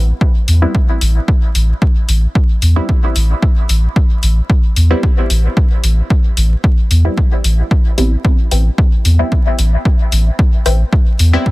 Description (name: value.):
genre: dub techno.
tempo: 112 BPM.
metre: 4/4.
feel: straight.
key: A minor.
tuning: A4 = 441 Hz.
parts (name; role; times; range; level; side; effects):
soft dub sub bass; bass; 0.0-11.4 s; A1 to E2; -11 LUFS; equal; sidechain pumping.
electronic kick drum; drums; 0.2-11.5 s; none; -12 LUFS; equal; overdrive.
electronic hi-hat; drums; 0.5-11.3 s; none; -21 LUFS; left 3 dB; overdrive.
filtered dub chord stab; stabs; 0.6-11.5 s; G3 to E4; -22 LUFS; equal; chorus, phaser, sidechain pumping, dub echo.
filtered dub chord stab; riff; 8.5-10.8 s; B4 to G5; -22 LUFS; left 5 dB; phaser, sidechain pumping, dub echo.
room: little or no reverb.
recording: dense, heavily limited modern master, vinyl crackle.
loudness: -11 LUFS.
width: side -20 dB against mid.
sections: 0.0-11.5 A section.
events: none.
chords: 0.0 Am7.